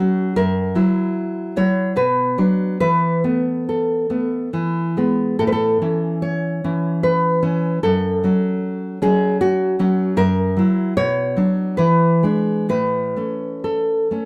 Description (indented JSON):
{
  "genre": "romantic piece for solo classical guitar",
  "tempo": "64-78 BPM",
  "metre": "3/4",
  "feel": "rubato",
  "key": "A major",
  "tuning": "A4 = 445 Hz",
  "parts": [
    { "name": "nylon-string guitar", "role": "solo", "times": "0.0-14.3 s", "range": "F#2 to C#5", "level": "-19 LUFS", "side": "equal", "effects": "none" }
  ],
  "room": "moderate studio reverb, RT60 0.6 s",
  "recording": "heard from further back in the room",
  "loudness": "-19 LUFS",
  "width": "mono",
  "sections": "0.0-14.3 A section",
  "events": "none",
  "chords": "0.4 F#7; 2.0 Bm; 2.8 Esus4; 4.5 E; 5.4 A; 7.8 F#m; 10.2 F#7; 11.0 Bm; 11.8 E7; 12.7 A"
}